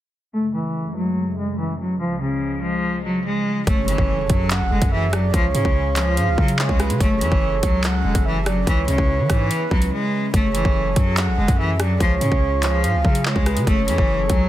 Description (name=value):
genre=hip hop, drill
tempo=144 BPM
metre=4/4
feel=half-time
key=F# minor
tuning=A4 = 437 Hz
part: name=clear cello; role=melody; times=0.3-14.5 s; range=C#3 to A3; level=-23 LUFS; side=equal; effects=none
part: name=hollow soft pad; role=sustained chords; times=0.3-14.5 s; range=C#2 to B4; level=-29 LUFS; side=left 2 dB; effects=chorus
part: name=breathy flute-like synth lead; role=second line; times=3.7-14.5 s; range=B4 to F#5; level=-25 LUFS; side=right 4 dB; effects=chorus, digital delay
part: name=long sustained 808-style bass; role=bass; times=3.7-14.5 s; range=E1 to E3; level=-22 LUFS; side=equal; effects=none
part: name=drill drum kit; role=drums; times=3.7-14.4 s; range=handclaps, hi-hat, kick drum, rim click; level=-21 LUFS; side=equal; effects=none
part: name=impact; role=sound effects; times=3.7-5.3 s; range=none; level=-30 LUFS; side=equal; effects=none
room=light reverb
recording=dense, heavily limited modern master, low-pass filter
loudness=-17 LUFS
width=side -13 dB against mid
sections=0.3-3.7 A section; 3.7-14.5 B section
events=filter sweep 0.3-3.7; impact 3.7-5.3; break 9.9-10.3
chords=0.3 F#madd9; 2.0 C#; 3.7 F#madd9; 5.3 C#; 7.0 F#madd9; 8.7 C#m7; 10.3 F#madd9; 12.0 C#; 13.7 F#madd9